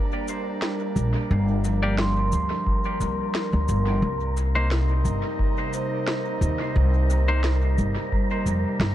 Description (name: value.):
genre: ambient dub.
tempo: 88 BPM.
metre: 4/4.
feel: swing 54% on 16ths.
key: unclear.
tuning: A4 = 441 Hz.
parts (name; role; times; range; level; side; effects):
airy breathy pad; sustained chords; 0.0-8.9 s; C3 to Eb4; -32 LUFS; equal; chorus.
vibraphone with soft mallets; arpeggios; 0.0-8.9 s; F3 to C6; -31 LUFS; right 2 dB; dub echo.
wind-like tuned noise texture; texture; 0.0-8.9 s; Bb4; -32 LUFS; equal; built-in reverb.
electronic cabasa and snare drum; drums; 0.3-8.9 s; none; -32 LUFS; equal; dub echo.
upright bass; bass; 1.0-8.9 s; G1 to F2; -22 LUFS; equal; none.
semi-hollow electric guitar; stabs; 1.8-7.4 s; Bb3 to D5; -32 LUFS; left 2 dB; dub echo.
electronic kick drum; drums; 2.7-8.3 s; none; -25 LUFS; equal; none.
room: light reverb.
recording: echo-heavy mix.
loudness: -21 LUFS.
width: side -12 dB against mid.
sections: 0.0-8.9 A section.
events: none.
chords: 0.0 Gm; 4.0 Cm7.